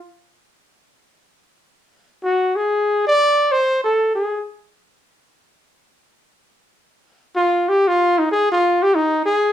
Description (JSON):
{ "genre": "jazz", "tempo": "free time", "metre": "none", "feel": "none", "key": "unclear", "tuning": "A4 = 440 Hz", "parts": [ { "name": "clear trumpet", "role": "solo", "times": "2.2-4.4, 7.4-9.5 s", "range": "Eb4 to D5", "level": "-15 LUFS", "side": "equal", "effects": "none" } ], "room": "wet studio reverb, RT60 0.6 s", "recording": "heard from further back in the room", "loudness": "-16 LUFS", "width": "side -11 dB against mid", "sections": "0.0-9.5 A section", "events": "none", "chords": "none" }